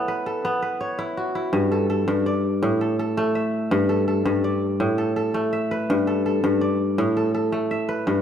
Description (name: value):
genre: west african traditional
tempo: 110 BPM (dotted quarters)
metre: 12/8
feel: straight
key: G lydian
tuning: A4 = 441 Hz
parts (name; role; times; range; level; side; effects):
- kora; solo; 0.0-8.2 s; G2 to E5; -20 LUFS; equal; none
room: wet recital hall reverb, RT60 1.6 s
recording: none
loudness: -20 LUFS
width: side -8 dB against mid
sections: 0.0-1.5 A section; 1.5-8.2 B section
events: none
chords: 0.0 E5; 1.5 G5; 2.6 A5; 3.7 G5; 4.8 A5; 5.9 G; 7.0 A5